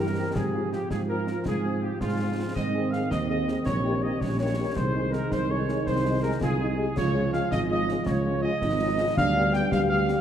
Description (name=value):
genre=military-style march for wind band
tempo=109 BPM (dotted quarters)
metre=6/8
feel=straight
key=unclear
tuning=A4 = 440 Hz
part: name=clear trumpet section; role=melody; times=0.0-10.2 s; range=F4 to G5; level=-31 LUFS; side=right 1 dB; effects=none
part: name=flute section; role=second line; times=0.0-10.2 s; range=F4 to G5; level=-34 LUFS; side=left 3 dB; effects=none
part: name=mellow euphonium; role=second line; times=0.0-10.2 s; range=C4 to Ab4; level=-32 LUFS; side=right 2 dB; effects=none
part: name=mellow French horn section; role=accompaniment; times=0.0-10.2 s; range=G3 to Ab4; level=-35 LUFS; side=left 4 dB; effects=none
part: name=warm trombone section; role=sustained chords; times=0.0-10.2 s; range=Eb3 to C4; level=-32 LUFS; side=right 2 dB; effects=none
part: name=dark tuba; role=bass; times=0.0-10.2 s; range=Ab1 to Ab2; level=-29 LUFS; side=right 2 dB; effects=none
part: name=concert snare drum, concert bass drum and clash cymbals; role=drums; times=0.4-10.2 s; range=none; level=-33 LUFS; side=left 1 dB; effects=none
room=wet recital hall reverb, RT60 1.6 s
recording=dark, warm production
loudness=-23 LUFS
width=side -9 dB against mid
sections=0.0-10.2 A section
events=none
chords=0.3 Fm/Ab; 2.6 Ab; 3.7 Eb7/Bb; 4.8 Ab/C; 7.0 Db; 9.2 G7/D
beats=| 0.35 0.90 | 1.45 2.00 | 2.56 3.11 | 3.66 4.21 | 4.76 5.31 | 5.87 6.42 | 6.97 7.52 | 8.07 8.62 | 9.17 9.72